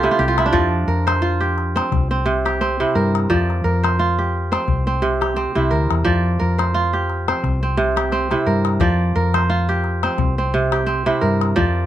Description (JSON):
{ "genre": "west african traditional, West African string and xylophone music", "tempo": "87 BPM", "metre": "4/4", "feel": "swing 56% on 16ths", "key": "unclear", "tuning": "A4 = 440 Hz", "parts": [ { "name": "kora", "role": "arpeggios", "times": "0.0-11.9 s", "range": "C3 to D5", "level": "-19 LUFS", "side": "right 2 dB", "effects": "none" }, { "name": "hollow-body short-scale fingered electric bass", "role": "bass", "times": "0.0-11.9 s", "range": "C2 to G2", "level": "-20 LUFS", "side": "left 1 dB", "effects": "none" }, { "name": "calabash", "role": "percussion", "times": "0.0-11.7 s", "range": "none", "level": "-24 LUFS", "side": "left 7 dB", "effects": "none" } ], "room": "light reverb", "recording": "none", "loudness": "-16 LUFS", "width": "side -12 dB against mid", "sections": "0.0-11.9 A section", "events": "kora fill 0.0-0.5", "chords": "0.0 C69; 0.5 F5; 1.9 C; 3.3 F5; 4.7 C; 6.1 F5; 7.4 C; 8.8 F5; 10.2 C" }